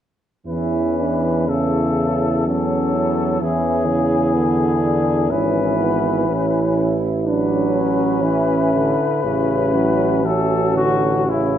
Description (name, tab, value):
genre	classical, hymn-like piece for brass band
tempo	62 BPM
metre	3/4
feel	uneven beats, rubato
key	A major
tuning	A4 = 440 Hz
part	warm flugelhorn	melody	0.5-11.6 s	E4 to B4	-24 LUFS	left 8 dB	none
part	warm French horn section	second line	0.5-11.6 s	C#4 to F#4	-23 LUFS	right 4 dB	none
part	clear euphonium	accompaniment	0.5-11.6 s	B3 to E4	-24 LUFS	left 2 dB	none
part	clear trombone	accompaniment	0.5-11.6 s	C#3 to F#3	-24 LUFS	right 3 dB	none
part	warm tuba	bass	0.5-11.6 s	G#1 to E2	-21 LUFS	equal	none
room	moderate recital hall reverb, RT60 1.5 s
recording	none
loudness	-16 LUFS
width	side -10 dB against mid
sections	0.5-11.6 A section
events	none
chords	0.5 A/E; 3.4 E7; 6.3 A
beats	| 0.46 1.48 2.47 | 3.41 4.35 5.30 | 6.28 7.26 8.24 | 9.24 10.24 11.28